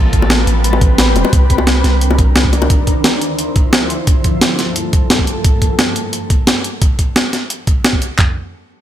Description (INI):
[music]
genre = liquid drum and bass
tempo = 175 BPM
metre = 4/4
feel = straight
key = unclear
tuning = A4 = 440 Hz
[part]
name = shimmering ambient pad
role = sustained chords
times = 0.0-5.4 s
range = D2 to C5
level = -19 LUFS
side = equal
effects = chorus, built-in reverb, sidechain pumping
[part]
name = long sustained 808-style bass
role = bass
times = 0.0-2.7 s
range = E1 to C2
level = -14 LUFS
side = equal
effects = none
[part]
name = breakbeat sampler-style drum kit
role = drums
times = 0.1-8.3 s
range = handclaps, kick drum, toms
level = -13 LUFS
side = equal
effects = none
[part]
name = breakbeat sampler-style drum kit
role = drums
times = 0.1-8.1 s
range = hi-hat, snare drum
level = -15 LUFS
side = equal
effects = none
[part]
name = bongos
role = percussion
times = 0.2-2.7 s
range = none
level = -21 LUFS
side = left 5 dB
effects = none
[sound]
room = small room ambience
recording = none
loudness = -11 LUFS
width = side -11 dB against mid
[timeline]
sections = 0.0-8.2 A section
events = filter sweep on ambient pad 0.0-5.4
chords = 0.0 Am9; 1.3 Cm9; 2.7 Dm9; 3.9 Gm9; 5.3 Am9; 6.8 N.C.